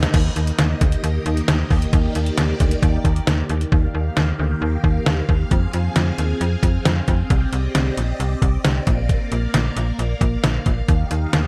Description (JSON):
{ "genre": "synth-pop", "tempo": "134 BPM", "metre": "4/4", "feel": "straight", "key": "Eb major", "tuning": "A4 = 440 Hz", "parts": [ { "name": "phased string machine", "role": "sustained chords", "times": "0.0-11.5 s", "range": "Eb3 to F5", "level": "-29 LUFS", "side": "equal", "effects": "ensemble chorus, phaser" }, { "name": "slap-like FM bass", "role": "bass", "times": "0.0-11.5 s", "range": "Bb1 to F2", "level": "-23 LUFS", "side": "equal", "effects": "none" }, { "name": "detuned 8-bit digital drum machine", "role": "drums", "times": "0.0-11.4 s", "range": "crash cymbal, hi-hat, kick drum, snare drum", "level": "-22 LUFS", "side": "equal", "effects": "dub echo" } ], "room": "little or no reverb", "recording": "echo-heavy mix", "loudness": "-19 LUFS", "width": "mono", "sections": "0.1-3.7 A section; 3.7-11.5 B section", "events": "none", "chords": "0.1 Eb; 3.7 Ebadd9; 5.5 Fm; 7.3 Cmadd9; 8.9 Bb; 10.9 Ebadd9", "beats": "| 0.14 0.59 1.03 1.48 | 1.93 2.38 2.83 3.27 | 3.72 4.17 4.62 5.06 | 5.51 5.96 6.41 6.86 | 7.30 7.75 8.20 8.65 | 9.09 9.54 9.99 10.44 | 10.88 11.33" }